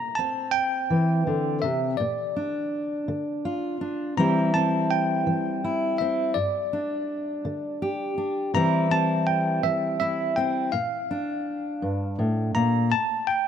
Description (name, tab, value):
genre	folk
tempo	55 BPM (dotted quarters)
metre	6/8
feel	straight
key	C mixolydian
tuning	A4 = 440 Hz
part	bell-like tine electric piano	melody	0.0-13.5 s	D5 to Bb5	-27 LUFS	right 1 dB	medium stereo tremolo
part	fingerpicked steel-string acoustic guitar	accompaniment	0.0-12.9 s	G2 to G4	-25 LUFS	left 1 dB	none
room	light reverb, small room ambience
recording	rough home demo mix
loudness	-23 LUFS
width	side -8 dB against mid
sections	0.0-12.9 A section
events	none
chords	0.0 C; 2.0 Bb; 4.2 C; 6.4 G5; 8.5 C; 10.7 Bb; 12.9 N.C.